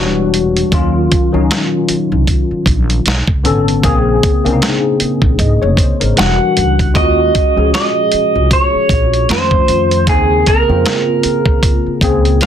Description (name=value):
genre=R&B, neo-soul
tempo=77 BPM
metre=4/4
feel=swing 57% on 16ths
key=Eb dorian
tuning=A4 = 440 Hz
part: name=tine electric piano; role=accompaniment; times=0.0-12.5 s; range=Db3 to Eb5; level=-15 LUFS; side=left 3 dB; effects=ensemble chorus
part: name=upright bass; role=bass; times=0.0-12.5 s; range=E1 to F2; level=-16 LUFS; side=equal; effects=none
part: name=dusty soul sampler-style drum kit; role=drums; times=0.3-12.5 s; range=hi-hat, kick drum, snare drum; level=-14 LUFS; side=equal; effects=none
part: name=electric guitar through a small old amp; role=melody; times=6.2-12.5 s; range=Ab4 to F#5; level=-14 LUFS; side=right 2 dB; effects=slapback echo
room=moderate small room reverb, RT60 0.5 s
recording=dense, heavily limited modern master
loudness=-10 LUFS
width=side -9 dB against mid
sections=0.0-7.0 A section; 7.0-12.5 B section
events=none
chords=0.0 Em9; 0.7 Ebm9; 3.1 Bm9; 3.8 Bbm9; 6.2 Em9; 7.0 Ebm11; 9.3 F7b13; 10.1 Bbm9/Eb